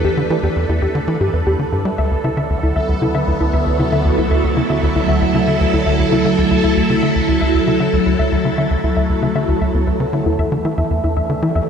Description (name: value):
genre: ambient, sequencer-driven space music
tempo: 116 BPM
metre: 4/4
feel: straight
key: unclear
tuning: A4 = 439 Hz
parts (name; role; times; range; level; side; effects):
- phased string machine; sustained chords; 0.0-11.7 s; D2 to B4; -17 LUFS; equal; ensemble chorus, phaser
- warbly dusty pluck; arpeggios; 0.0-11.7 s; B3 to E5; -23 LUFS; left 3 dB; chorus, auto-pan, tape echo
- tight sequencer bass; riff; 0.0-11.6 s; D2 to G3; -18 LUFS; equal; tape echo
- bubbling stepped-filter texture; texture; 0.0-11.7 s; A4 to E5; -27 LUFS; right 5 dB; chorus, built-in reverb
room: wet lush hall reverb, RT60 2.9 s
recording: dreamy mix soaked in reverb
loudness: -14 LUFS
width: side -7 dB against mid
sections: 0.0-11.7 A section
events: none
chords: 0.0 Em; 2.0 D; 10.3 Em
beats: 0.43 0.95 1.47 | 1.98 2.50 3.02 3.54 | 4.05 4.57 5.09 5.61 | 6.12 6.64 7.16 7.67 | 8.19 8.71 9.23 9.74 | 10.26 10.78 11.29